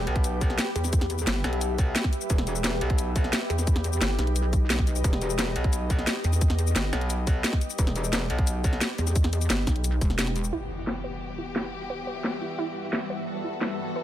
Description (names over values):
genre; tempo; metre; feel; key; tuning
dark technical drum and bass; 175 BPM; 4/4; straight; E harmonic minor; A4 = 440 Hz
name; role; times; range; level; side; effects
metallic wobble bass; bass; 0.0-8.8 s; E1 to B1; -28 LUFS; equal; chorus, overdrive, sidechain pumping
granular cloud pad; texture; 0.0-14.0 s; G3 to E5; -34 LUFS; left 1 dB; built-in reverb, sidechain pumping
drum and bass drum kit; drums; 0.1-14.0 s; hi-hat, shaker, snare drum; -29 LUFS; equal; overdrive, low-pass filter on snare, low-pass filter on hats, low-pass filter on perc
electronic kick drum; drums; 0.2-10.1 s; none; -24 LUFS; equal; overdrive
pulsing pluck wobble bass; bass; 0.8-1.4, 3.5-6.9, 9.0-10.5 s; E1 to E2; -25 LUFS; equal; chorus
warm studio string section; sustained chords; 10.5-14.0 s; E3 to A4; -35 LUFS; left 3 dB; sidechain pumping
wide unison pluck; arpeggios; 10.5-14.0 s; E4 to B4; -36 LUFS; right 3 dB; sidechain pumping, ping-pong delay
impact; sound effects; 10.5-11.9 s; none; -41 LUFS; equal; none
room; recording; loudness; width
digital ambience; none; -24 LUFS; side -12 dB against mid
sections
0.0-10.5 A section; 10.5-14.0 B section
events
kick drops out 10.2-10.5; impact 10.5-11.9; filter sweep on drum 10.5-14.0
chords
0.0 Em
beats
0.24 0.59 | 0.93 1.27 1.61 1.96 | 2.30 2.64 2.99 3.33 | 3.67 4.01 4.36 4.70 | 5.04 5.39 5.73 6.07 | 6.41 6.76 7.10 7.44 | 7.79 8.13 8.47 8.81 | 9.16 9.50 9.84 10.19 | 10.53 10.87 11.21 11.56 | 11.90 12.24 12.59 12.93 | 13.27 13.61 13.96